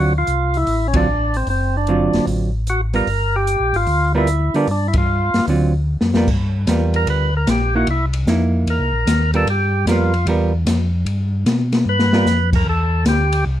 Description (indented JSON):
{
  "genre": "soul jazz organ trio",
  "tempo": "150 BPM",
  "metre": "4/4",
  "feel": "swing 66% on 8ths",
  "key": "unclear",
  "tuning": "A4 = 440 Hz",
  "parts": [
    { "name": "percussive tonewheel organ", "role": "melody", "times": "0.0-13.4 s", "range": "C4 to B4", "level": "-20 LUFS", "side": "equal", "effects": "overdrive, slow rotary speaker" },
    { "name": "hollow-body jazz guitar", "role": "accompaniment", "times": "0.0-12.3 s", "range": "D3 to Bb4", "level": "-20 LUFS", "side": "right 3 dB", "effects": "none" },
    { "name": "mellow tonewheel organ", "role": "bass", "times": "0.0-13.6 s", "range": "F#1 to D3", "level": "-18 LUFS", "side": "equal", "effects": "chorus vibrato, slow rotary speaker" },
    { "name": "open jazz drum kit", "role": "drums", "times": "0.3-13.4 s", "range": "crash cymbal, hi-hat, kick drum, ride cymbal, snare drum", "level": "-21 LUFS", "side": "left 1 dB", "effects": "none" }
  ],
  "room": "light reverb",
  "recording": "none",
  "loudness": "-15 LUFS",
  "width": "side -12 dB against mid",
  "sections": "0.0-6.3 A section; 6.3-13.6 B section",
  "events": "band accent 0.9, 4.9; drum fill 5.9-6.3, 11.9-12.3; tonewheel organ solo 6.3-13.6",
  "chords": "0.0 D7#9; 3.1 Gm7; 5.5 D7#9; 6.3 G7#9; 7.9 C7#9; 9.5 G7#9; 12.7 C",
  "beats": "0.28 0.68 1.08 | 1.48 1.88 2.28 2.68 | 3.08 3.48 3.88 4.28 | 4.68 5.08 5.48 5.88 | 6.28 6.68 7.08 7.47 | 7.88 8.27 8.67 9.07 | 9.47 9.87 10.27 10.67 | 11.07 11.47 11.87 12.26 | 12.66 13.06 13.46"
}